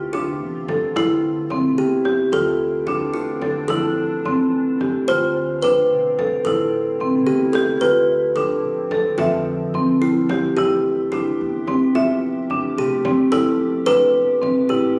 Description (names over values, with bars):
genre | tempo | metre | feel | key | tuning
contemporary instrumental, chamber music in an uneven meter | 219 BPM (eighths) | 5/8 | straight | A minor | A4 = 440 Hz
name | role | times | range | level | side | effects
kalimba | second line | 0.0-15.0 s | E4 to C5 | -23 LUFS | equal | none
glassy FM pad | sustained chords | 0.0-15.0 s | F3 to G4 | -33 LUFS | equal | ensemble chorus, built-in reverb
upright bass | bass | 0.0-15.0 s | A1 to F2 | -36 LUFS | equal | none
marimba with medium hard mallets | arpeggios | 0.1-15.0 s | C4 to E5 | -23 LUFS | equal | none
frame drum | percussion | 0.1-14.9 s | none | -34 LUFS | equal | none
room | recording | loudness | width
light reverb | recorded on a phone in the room, studio reverb, compression | -19 LUFS | mono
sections
0.0-10.6 A section; 10.6-15.0 B section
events
none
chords
0.0 Dm7; 1.0 Am; 2.3 Dm7; 3.7 Fmaj7; 5.1 Dm7; 6.5 Am; 7.8 Dm7; 9.2 Fmaj7; 10.6 Am9; 12.0 Fmaj9/A; 13.3 Am9